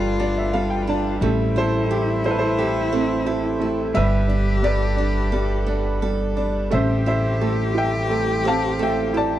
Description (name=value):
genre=acoustic folk-pop ballad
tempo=87 BPM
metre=4/4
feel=straight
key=unclear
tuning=A4 = 440 Hz
part: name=bright upright piano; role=melody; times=0.0-9.4 s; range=E3 to A5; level=-23 LUFS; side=equal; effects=none
part: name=warm cello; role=second line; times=0.0-9.4 s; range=E4 to G4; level=-27 LUFS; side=left 4 dB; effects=none
part: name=pedal harmonium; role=sustained chords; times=0.0-9.4 s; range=G3 to B4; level=-33 LUFS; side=left 1 dB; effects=none
part: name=picked steel-string acoustic guitar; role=arpeggios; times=0.0-9.4 s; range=G3 to A4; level=-27 LUFS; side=right 7 dB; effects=none
part: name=upright bass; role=bass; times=0.0-9.4 s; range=G1 to A1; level=-24 LUFS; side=equal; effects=none
room=little or no reverb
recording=dry, close 1970s-style studio recording, lossy compression artefacts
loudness=-19 LUFS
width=side -12 dB against mid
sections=0.0-9.4 A section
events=upright piano fill 0.0-1.2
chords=0.0 Gadd9; 1.2 Am7; 4.0 Gadd9; 6.7 Am7